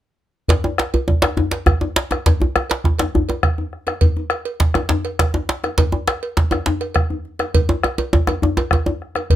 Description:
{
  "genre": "west african traditional, West African drum ensemble",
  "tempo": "136 BPM (dotted quarters)",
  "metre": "12/8",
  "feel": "straight",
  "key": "none",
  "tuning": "none",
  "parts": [
    { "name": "bombo", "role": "percussion", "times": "0.5-9.4 s", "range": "none", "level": "-18 LUFS", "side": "equal", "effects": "none" },
    { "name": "cowbell", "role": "percussion", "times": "0.5-9.4 s", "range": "none", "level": "-26 LUFS", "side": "right 6 dB", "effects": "none" },
    { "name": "djembe", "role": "percussion", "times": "0.5-9.4 s", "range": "none", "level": "-22 LUFS", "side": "left 3 dB", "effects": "none" },
    { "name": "djembe", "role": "percussion", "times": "0.5-9.0 s", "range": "none", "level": "-20 LUFS", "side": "right 1 dB", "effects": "none" }
  ],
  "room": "light reverb",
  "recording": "close, detailed microphones",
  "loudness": "-17 LUFS",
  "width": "side -12 dB against mid",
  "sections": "0.5-9.4 A section",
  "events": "none",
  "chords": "none"
}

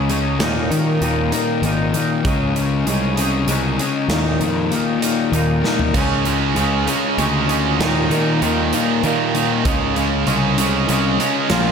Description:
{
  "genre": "quiet-loud alternative rock",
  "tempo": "65 BPM (dotted quarters)",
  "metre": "6/8",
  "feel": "straight",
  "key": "unclear",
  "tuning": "A4 = 440 Hz",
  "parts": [
    { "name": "twangy electric guitar", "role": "arpeggios", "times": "0.0-11.7 s", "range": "Eb2 to Ab4", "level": "-22 LUFS", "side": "right 2 dB", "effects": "analog chorus, analog delay" },
    { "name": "fuzz guitar", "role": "riff", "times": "0.0-11.7 s", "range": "Eb2 to Db4", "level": "-21 LUFS", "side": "left 8 dB", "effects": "distortion" },
    { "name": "fuzz picked electric bass", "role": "bass", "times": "0.0-11.7 s", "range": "Ab1 to Eb3", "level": "-22 LUFS", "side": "right 1 dB", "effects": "overdrive" },
    { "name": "big rock drum kit", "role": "drums", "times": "0.1-11.6 s", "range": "hi-hat, kick drum, snare drum, splash cymbal, toms", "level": "-25 LUFS", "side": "right 1 dB", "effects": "none" },
    { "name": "tight distorted guitar", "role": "riff", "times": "5.9-11.7 s", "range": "Eb2 to Db4", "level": "-21 LUFS", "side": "right 13 dB", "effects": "distortion" }
  ],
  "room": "moderate lush hall reverb, RT60 2.7 s",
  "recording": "big arena sound",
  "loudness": "-16 LUFS",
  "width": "side -6 dB against mid",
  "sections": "0.0-11.7 A section",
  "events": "half time 0.0-11.7; drum fill 5.6-6.0",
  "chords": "0.4 Eb5; 2.3 Dbsus2; 4.1 Ebsus2; 6.0 Dbsus2; 7.8 Eb5; 9.7 Dbsus2"
}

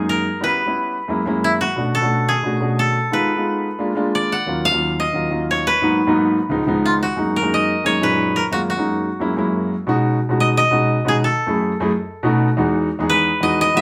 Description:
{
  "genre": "jazz",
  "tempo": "178 BPM",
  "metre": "4/4",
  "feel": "straight",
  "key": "F# major, B major from 9.9 s",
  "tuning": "A4 = 440 Hz",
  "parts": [
    { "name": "koto", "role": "melody", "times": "0.0-13.8 s", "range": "E4 to F#5", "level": "-22 LUFS", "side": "equal", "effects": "none" },
    { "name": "warm grand piano", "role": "accompaniment", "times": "0.0-13.8 s", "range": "C#2 to G#4", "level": "-21 LUFS", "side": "equal", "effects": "none" }
  ],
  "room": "wet studio reverb, RT60 0.6 s",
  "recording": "band playing live in one room",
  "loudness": "-19 LUFS",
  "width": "mono",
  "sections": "0.0-9.9 A section; 9.9-13.8 B section",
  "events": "none",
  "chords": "0.4 C#m7b5; 1.1 F#7; 1.8 Bm7; 3.1 Fm7b5; 3.8 A#7; 4.5 D#m9; 5.8 G#m7; 6.5 C#7; 7.2 F#6; 9.2 F#7; 9.9 B6; 11.2 F#m7; 11.9 B7; 12.6 Emaj7"
}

